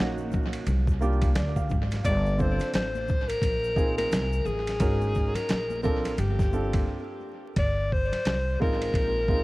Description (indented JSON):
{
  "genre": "hip hop, jazz-hop",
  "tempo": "87 BPM",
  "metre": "4/4",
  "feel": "swing 60% on 16ths",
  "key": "unclear",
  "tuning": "A4 = 438 Hz",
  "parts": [
    { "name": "breathy alto saxophone", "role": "melody", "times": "0.0-9.4 s", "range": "F#4 to D5", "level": "-29 LUFS", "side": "left 1 dB", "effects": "tape echo" },
    { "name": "warm concert grand piano", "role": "accompaniment", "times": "0.0-9.4 s", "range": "Ab3 to F5", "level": "-33 LUFS", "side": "right 3 dB", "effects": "tape echo" },
    { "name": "upright bass", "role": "bass", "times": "0.0-9.4 s", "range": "G1 to D2", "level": "-28 LUFS", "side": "equal", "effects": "none" },
    { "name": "dusty soul sampler-style drum kit", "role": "drums", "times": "0.0-9.4 s", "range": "hi-hat, kick drum, ride cymbal, snare drum", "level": "-28 LUFS", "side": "equal", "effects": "tape echo" },
    { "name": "congas and tube shaker", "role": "percussion", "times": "0.2-6.9 s", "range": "none", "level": "-41 LUFS", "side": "left 5 dB", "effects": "tape echo" }
  ],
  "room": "small room ambience",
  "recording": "echo-heavy mix, vinyl crackle",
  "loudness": "-24 LUFS",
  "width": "side -20 dB against mid",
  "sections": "0.0-7.6 A section; 7.6-9.4 A section",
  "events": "grand piano fill 1.0-2.0; break 6.9-7.6",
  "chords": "0.0 Ab9sus4 (rootless); 0.7 C9sus4; 2.0 G9sus4; 3.4 Bb9sus4; 4.8 Ab9sus4; 6.2 G9sus4"
}